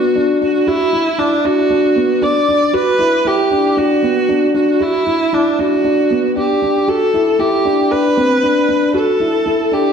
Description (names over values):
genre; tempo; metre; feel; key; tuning
electronica; 116 BPM; 4/4; straight; G major; A4 = 440 Hz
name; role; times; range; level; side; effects
warm viola; melody; 0.0-9.9 s; D4 to D5; -15 LUFS; right 1 dB; none
felt-muted upright piano; riff; 0.0-9.9 s; B3 to F#4; -16 LUFS; equal; tape echo
room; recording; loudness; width
wet recital hall reverb, RT60 1.6 s; none; -12 LUFS; side -7 dB against mid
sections
0.0-9.9 A section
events
none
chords
0.0 Gmaj7(no3) (rootless); 6.9 Dsus4